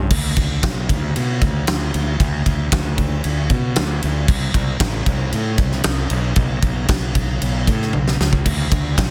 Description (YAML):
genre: quiet-loud alternative rock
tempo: 115 BPM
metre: 4/4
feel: straight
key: unclear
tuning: A4 = 440 Hz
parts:
  - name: fuzz fingered electric bass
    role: bass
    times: 0.0-9.1 s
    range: A1 to B2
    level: -23 LUFS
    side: equal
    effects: overdrive
  - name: big rock drum kit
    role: drums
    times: 0.1-9.1 s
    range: crash cymbal, kick drum, ride cymbal, snare drum, toms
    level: -21 LUFS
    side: equal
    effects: soft clipping on snare
room: little or no reverb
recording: dense, heavily limited modern master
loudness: -19 LUFS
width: mono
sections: 0.1-9.1 A section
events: drum fill 7.9-8.5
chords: none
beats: | 0.11 0.64 1.16 1.68 | 2.20 2.73 3.25 3.77 | 4.29 4.81 5.33 5.85 | 6.38 6.90 7.42 7.94 | 8.46 8.98